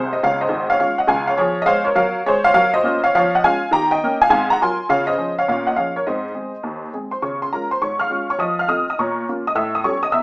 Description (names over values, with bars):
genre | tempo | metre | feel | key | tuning
jazz, stride piano | 205 BPM | 4/4 | swing 65% on 8ths | Db major | A4 = 440 Hz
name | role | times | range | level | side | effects
honky-tonk upright piano | solo | 0.0-10.2 s | Ab1 to F6 | -16 LUFS | equal | none
room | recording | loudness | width
wet studio reverb, RT60 0.6 s | rough home demo mix, small speaker sound | -16 LUFS | side -27 dB against mid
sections
0.0-7.2 A section; 7.2-10.2 B section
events
none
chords
0.2 Db; 1.4 Db/F; 2.5 Gbmaj7; 3.1 Db/F; 3.7 Eb7; 4.3 Ab13; 4.9 Db; 5.5 Bbm7; 6.0 Ab; 7.2 Db; 8.4 F7; 9.0 Bbm; 9.6 A7